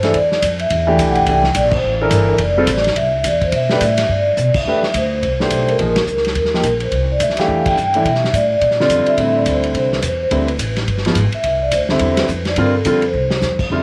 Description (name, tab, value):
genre	jazz, small-group swing and bop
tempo	212 BPM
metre	4/4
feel	swing 60% on 8ths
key	C major from 4.7 s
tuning	A4 = 440 Hz
part	vibraphone with soft mallets	melody	0.0-13.8 s	A4 to G5	-20 LUFS	equal	tape echo
part	warm concert grand piano	accompaniment	0.0-13.8 s	D3 to C5	-21 LUFS	equal	none
part	upright bass	bass	0.0-13.8 s	F1 to B2	-23 LUFS	equal	none
part	vintage drum kit	drums	0.0-13.8 s	crash cymbal, hi-hat, kick drum, ride cymbal, snare drum	-24 LUFS	equal	none
room	light reverb, small room ambience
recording	none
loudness	-16 LUFS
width	mono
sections	0.0-4.7 A section; 4.7-13.7 B section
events	band accent 1.7, 4.5, 5.9, 7.6, 12.2; drum fill 4.4, 13.1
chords	0.1 Em7; 1.3 C13; 2.4 Fmaj7; 3.5 A9sus4; 4.1 G; 4.7 Cmaj7; 5.8 Bbm7; 6.4 Ebadd9; 6.9 Fmaj9; 8.1 Asus24; 8.6 Bbadd9; 9.2 Am7; 10.3 D5; 10.9 G7b9; 11.4 Cmaj7; 12.6 G5; 13.1 C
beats	| 0.14 0.42 0.70 0.99 | 1.27 1.55 1.83 2.12 | 2.40 2.68 2.96 3.25 | 3.53 3.81 4.09 4.38 | 4.66 4.94 5.22 5.51 | 5.79 6.07 6.35 6.64 | 6.92 7.20 7.49 7.77 | 8.05 8.34 8.62 8.90 | 9.18 9.47 9.75 10.03 | 10.31 10.60 10.88 11.16 | 11.44 11.73 12.01 12.29 | 12.57 12.86 13.14 13.42 | 13.71